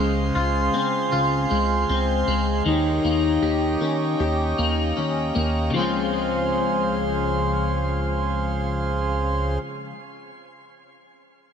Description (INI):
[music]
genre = dream pop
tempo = 78 BPM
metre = 4/4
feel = straight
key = Db lydian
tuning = A4 = 439 Hz
[part]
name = pedal harmonium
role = sustained chords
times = 0.0-9.6 s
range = Db3 to C6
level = -26 LUFS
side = right 3 dB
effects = none
[part]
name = clean electric guitar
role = arpeggios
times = 0.0-10.0 s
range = Db3 to G4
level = -24 LUFS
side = left 4 dB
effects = analog chorus, ping-pong delay
[part]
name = chorused synth bass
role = bass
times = 0.0-9.6 s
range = Db2 to Eb3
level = -26 LUFS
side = right 1 dB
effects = none
[sound]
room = moderate shimmer reverb, RT60 4.2 s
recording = none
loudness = -20 LUFS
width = side -7 dB against mid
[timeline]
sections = 0.0-5.7 A section; 5.7-8.8 B section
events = none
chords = 0.0 Dbmaj7; 2.7 Eb7; 5.7 Dbmaj7